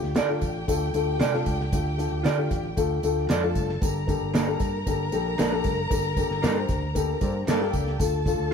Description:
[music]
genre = uptempo 1960s-style soul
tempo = 115 BPM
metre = 4/4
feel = straight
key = G minor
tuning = A4 = 440 Hz
[part]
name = warm studio violin section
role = second line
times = 0.0-8.5 s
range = G4 to Bb5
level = -33 LUFS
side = equal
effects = none
[part]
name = dark upright piano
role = accompaniment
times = 0.0-8.5 s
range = A3 to C5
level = -28 LUFS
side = left 6 dB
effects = none
[part]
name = fingered electric bass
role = bass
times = 0.0-8.5 s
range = F#1 to D3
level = -29 LUFS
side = right 1 dB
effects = none
[part]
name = cloth-damped thuddy drum kit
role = drums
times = 0.0-8.4 s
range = hi-hat, kick drum, snare drum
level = -28 LUFS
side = equal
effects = none
[part]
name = electric guitar through a small old amp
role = stabs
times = 0.2-8.5 s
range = Bb3 to D5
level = -29 LUFS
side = right 4 dB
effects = none
[part]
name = congas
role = percussion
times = 0.2-8.4 s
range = none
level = -42 LUFS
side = left 3 dB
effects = none
[part]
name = tambourine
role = percussion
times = 0.2-8.4 s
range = none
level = -43 LUFS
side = right 5 dB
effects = none
[part]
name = warm horn section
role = second line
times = 7.2-8.0 s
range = Bb3 to D5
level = -35 LUFS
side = right 4 dB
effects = none
[sound]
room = moderate stone room reverb, RT60 1.3 s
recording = band playing live in one room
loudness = -23 LUFS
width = side -6 dB against mid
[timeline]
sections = 0.0-8.5 A section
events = band accent 5.9-8.0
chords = 0.0 Dm; 3.8 Gmadd9; 8.0 Dm

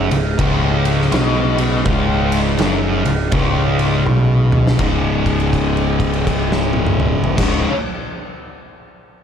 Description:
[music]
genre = stoner and doom metal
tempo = 82 BPM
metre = 4/4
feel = swing 63% on 8ths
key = unclear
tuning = A4 = 442 Hz
[part]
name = percussive tonewheel organ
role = sustained chords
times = 0.0-7.6 s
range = C#3 to D#4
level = -25 LUFS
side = right 2 dB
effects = slow rotary speaker
[part]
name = thick fuzz guitar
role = riff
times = 0.0-7.7 s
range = C#2 to C#3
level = -17 LUFS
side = left 1 dB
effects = distortion
[part]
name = growling picked electric bass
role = bass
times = 0.0-7.6 s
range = C#1 to B1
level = -22 LUFS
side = equal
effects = overdrive
[part]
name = oversized low-tuned drum kit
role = drums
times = 0.1-7.6 s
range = crash cymbal, kick drum, ride cymbal, snare drum, toms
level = -20 LUFS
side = equal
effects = none
[sound]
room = light reverb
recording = none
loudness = -14 LUFS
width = side -8 dB against mid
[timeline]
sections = 0.0-4.8 A section; 4.8-7.7 B section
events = drum fill 4.1-4.8; held note 4.8-7.3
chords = 0.0 C#5

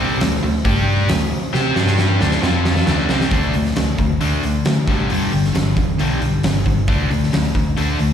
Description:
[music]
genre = hard rock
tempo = 135 BPM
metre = 4/4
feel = straight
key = unclear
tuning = A4 = 440 Hz
[part]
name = cranked stack guitar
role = riff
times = 0.0-8.1 s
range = G2 to C5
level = -21 LUFS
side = left 9 dB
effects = overdrive, slapback echo
[part]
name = crunchy overdriven guitar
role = riff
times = 0.0-8.1 s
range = G2 to C5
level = -22 LUFS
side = right 8 dB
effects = slapback echo
[part]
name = hollow-body short-scale fingered electric bass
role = bass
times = 0.0-8.1 s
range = E1 to D3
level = -20 LUFS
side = equal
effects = none
[part]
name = huge arena drum kit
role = drums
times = 0.2-8.1 s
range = hi-hat, kick drum, snare drum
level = -20 LUFS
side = equal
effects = none
[sound]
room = light reverb, studio reverb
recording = live gig heard through the venue's PA, recital hall reverb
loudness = -15 LUFS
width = side -8 dB against mid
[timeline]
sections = 0.0-3.3 A section; 3.3-8.1 B section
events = drum fill 1.5-3.3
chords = 0.0 D5; 0.7 G5; 1.1 D5; 1.8 G5; 2.2 D5; 2.4 F5; 2.9 D5; 4.9 G; 6.9 D5

